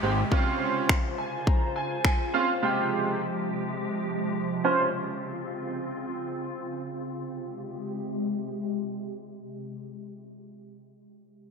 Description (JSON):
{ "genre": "dance-pop", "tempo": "104 BPM", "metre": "4/4", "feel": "straight", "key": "Ab major", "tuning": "A4 = 441 Hz", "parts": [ { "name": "clear grand piano", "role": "accompaniment", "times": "0.0-4.9 s", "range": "C3 to Bb5", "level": "-27 LUFS", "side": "right 3 dB", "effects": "analog chorus, sidechain pumping, low-pass filter" }, { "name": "glassy FM pad", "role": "sustained chords", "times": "0.0-10.3 s", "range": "C3 to C5", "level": "-32 LUFS", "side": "left 1 dB", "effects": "ensemble chorus, built-in reverb, sidechain pumping, low-pass filter" }, { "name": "downlifter", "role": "sound effects", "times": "0.0-2.6 s", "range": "none", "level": "-40 LUFS", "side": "left 1 dB", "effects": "none" }, { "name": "pop drum kit", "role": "drums", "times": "0.3-2.2 s", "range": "finger snaps, kick drum", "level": "-24 LUFS", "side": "left 1 dB", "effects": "none" } ], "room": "wet plate reverb, RT60 2.2 s", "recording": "bright 1980s-style digital production", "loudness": "-26 LUFS", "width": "side -5 dB against mid", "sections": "0.0-7.2 A section; 7.2-9.5 B section", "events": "filter sweep 0.0-7.2; grand piano fill 0.9-2.6", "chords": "0.3 Dbmaj7; 2.6 Fmadd9/C; 4.6 Dbmaj7; 7.2 Abmaj7" }